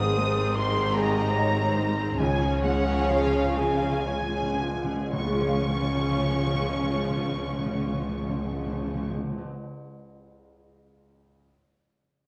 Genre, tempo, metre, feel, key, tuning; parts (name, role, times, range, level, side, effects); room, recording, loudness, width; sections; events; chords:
cinematic, emotional film score for orchestra; 37-52 BPM (dotted quarters); 6/8; rubato; Db major; A4 = 439 Hz
muted studio violin section; melody; 0.0-9.1 s; F5 to Eb6; -36 LUFS; equal
mellow concert flute; second line; 0.0-9.1 s; Db5 to Eb6; -37 LUFS; equal
muted studio violin section; second line; 0.0-9.1 s; F4 to F5; -38 LUFS; equal
dark grand piano; accompaniment; 0.0-11.5 s; Db2 to F5; -35 LUFS; equal
muted studio viola section; accompaniment; 0.0-9.1 s; Ab3 to Ab4; -39 LUFS; equal
warm French horn section; sustained chords; 0.0-9.1 s; C3 to Db4; -34 LUFS; equal
concert harp; arpeggios; 0.0-9.8 s; Ab2 to Db6; -36 LUFS; equal
muted studio cello section; bass; 0.0-9.1 s; Ab2 to Db3; -34 LUFS; equal
muted studio double bass section; bass; 0.0-9.1 s; Ab1 to Db2; -34 LUFS; equal
timpani; percussion; 0.0-9.5 s; Ab2 to Db3; -35 LUFS; equal
wet stone room reverb, RT60 1.0 s; -26 LUFS; mono
0.0-5.1 A section; 5.1-8.3 B section
slowing down 0.0-5.1; timpani fill 2.2-5.1
0.0 Ab; 2.2 Db